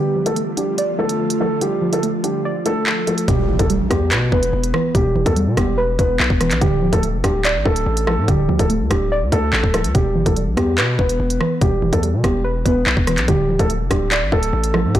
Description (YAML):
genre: hip hop, drill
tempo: 144 BPM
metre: 4/4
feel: half-time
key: E phrygian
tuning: A4 = 440 Hz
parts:
  - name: dark concert grand piano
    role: melody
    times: 0.0-15.0 s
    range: G3 to B4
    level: -21 LUFS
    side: equal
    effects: low-pass filter
  - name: soft round pluck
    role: accompaniment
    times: 0.0-15.0 s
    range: B2 to D5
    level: -22 LUFS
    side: right 2 dB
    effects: chorus, low-pass filter
  - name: ethereal airy pad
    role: sustained chords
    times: 0.0-3.2 s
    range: D3 to F4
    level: -26 LUFS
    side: equal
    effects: ensemble chorus, built-in reverb, low-pass filter
  - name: drill drum kit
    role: drums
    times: 0.3-15.0 s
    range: handclaps, hi-hat, kick drum, rim click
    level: -19 LUFS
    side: equal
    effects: soft clipping on snare
  - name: distorted 808-style bass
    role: bass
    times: 3.3-15.0 s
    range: D1 to B2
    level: -21 LUFS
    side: equal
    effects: distortion
  - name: impact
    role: sound effects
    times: 3.3-4.9 s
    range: none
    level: -29 LUFS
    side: equal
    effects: none
room: light reverb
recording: blown-out, overdriven recording, overdrive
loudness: -15 LUFS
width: side -12 dB against mid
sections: 0.0-3.3 A section; 3.3-15.0 B section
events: filter sweep 0.0-3.3; impact 3.3-4.9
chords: 0.0 Dm; 3.3 Em; 6.6 Dm; 9.9 Em; 13.3 Dm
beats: 0.36 0.78 1.20 | 1.61 2.03 2.45 2.87 | 3.28 3.70 4.12 4.53 | 4.95 5.37 5.78 6.20 | 6.62 7.03 7.45 7.87 | 8.28 8.70 9.12 9.53 | 9.95 10.37 10.78 11.20 | 11.62 12.03 12.45 12.87 | 13.28 13.70 14.12 14.53 | 14.95